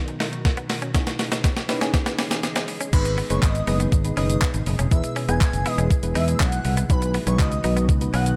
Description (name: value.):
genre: dance-pop.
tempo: 121 BPM.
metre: 4/4.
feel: straight.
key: G# minor.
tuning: A4 = 440 Hz.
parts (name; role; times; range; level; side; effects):
soft round pluck; accompaniment; 0.0-8.4 s; F#3 to B4; -32 LUFS; equal; chorus, sidechain pumping, tape echo.
glassy FM pad; sustained chords; 0.1-8.4 s; B2 to D#5; -35 LUFS; equal; ensemble chorus, built-in reverb, sidechain pumping.
clean 12-bit digital drum machine; drums; 0.1-8.4 s; crash cymbal, handclaps, hi-hat, kick drum, shaker, snare drum; -25 LUFS; equal; none.
direct-recorded clean electric guitar; riff; 0.2-8.2 s; B3 to E4; -36 LUFS; equal; subtle chorus, tape echo.
airy dreamy lead; melody; 2.9-8.3 s; B4 to G#5; -32 LUFS; equal; chorus, sidechain pumping, tape echo.
fingered electric bass; bass; 2.9-8.3 s; E1 to E2; -25 LUFS; equal; sidechain pumping.
room: light reverb, digital ambience.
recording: echo-heavy mix.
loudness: -22 LUFS.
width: mono.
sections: 0.0-2.9 A section; 2.9-8.4 B section.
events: build-up 0.0-2.9; drum fill 0.0-2.9; drop 2.9-8.4.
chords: 0.0 B; 0.9 C#madd9; 2.9 G#m; 4.9 E; 6.9 B.